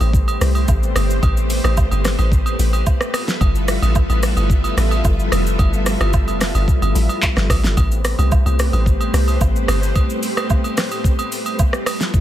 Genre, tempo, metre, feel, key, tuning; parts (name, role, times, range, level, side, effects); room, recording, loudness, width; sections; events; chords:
amapiano; 110 BPM; 4/4; straight; A minor; A4 = 440 Hz
string machine, cellos; sustained chords; 0.0-12.2 s; G3 to E5; -23 LUFS; equal; ensemble chorus, sidechain pumping
deep log drum bass; bass; 0.0-9.9 s; F1 to C2; -17 LUFS; equal
smooth R&B drum kit; drums; 0.0-12.2 s; handclaps, hi-hat, kick drum, rim click, shaker, snare drum; -18 LUFS; equal
agogo bells and woodblock; percussion; 0.0-12.0 s; -27 LUFS; right 6 dB
little or no reverb; -15 LUFS; side -12 dB against mid
0.0-12.2 A section
0.0 Am9; 3.1 G13; 7.8 Am9